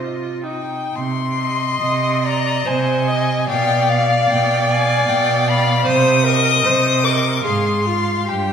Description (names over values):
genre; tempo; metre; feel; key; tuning
classical, slow romantic movement for string quartet; 52-77 BPM; 3/4; rubato; C minor; A4 = 440 Hz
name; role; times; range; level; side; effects
rich violin; melody; 0.0-8.5 s; Eb5 to Eb6; -20 LUFS; left 6 dB; none
rich viola; accompaniment; 0.0-8.5 s; Eb4 to Eb5; -20 LUFS; right 1 dB; none
clear cello; bass; 0.0-8.5 s; G2 to C3; -20 LUFS; right 3 dB; none
rich violin; second line; 1.4-8.3 s; Eb5 to F5; -25 LUFS; left 2 dB; none
room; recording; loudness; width
wet recital hall reverb, RT60 1.6 s; recorded in a church or concert hall; -15 LUFS; side -7 dB against mid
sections
1.0-8.5 A section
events
none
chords
0.0 Cm; 3.5 Bdim; 5.9 Cm; 7.5 Fm/Ab